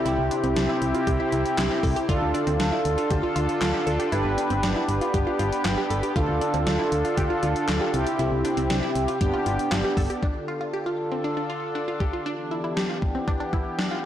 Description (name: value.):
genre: synth-pop.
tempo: 118 BPM.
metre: 4/4.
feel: straight.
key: D dorian.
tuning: A4 = 442 Hz.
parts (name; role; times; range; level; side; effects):
mellow synth brass; accompaniment; 0.0-10.2 s; B3 to B4; -25 LUFS; right 1 dB; chorus.
sweeping resonant pad; sustained chords; 0.0-14.1 s; C3 to A4; -30 LUFS; left 1 dB; chorus.
wide unison pluck; arpeggios; 0.1-14.0 s; C4 to A4; -31 LUFS; equal; slapback echo.
solid FM bass; bass; 0.1-10.1 s; G1 to D2; -27 LUFS; equal; tube saturation.
gated 80s digital drum machine; drums; 0.1-13.9 s; handclaps, hi-hat, kick drum, snare drum; -28 LUFS; equal; gated reverb, gated reverb snare, overdrive.
room: moderate plate reverb, RT60 2.3 s.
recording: blown-out, overdriven recording, overdrive.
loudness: -22 LUFS.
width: side -11 dB against mid.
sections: 0.0-10.2 A section; 10.2-14.1 B section.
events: none.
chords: 0.0 C; 2.1 Dm; 4.1 G; 6.2 Dm; 7.9 C; 9.2 G; 10.2 Dm; 12.3 Em7.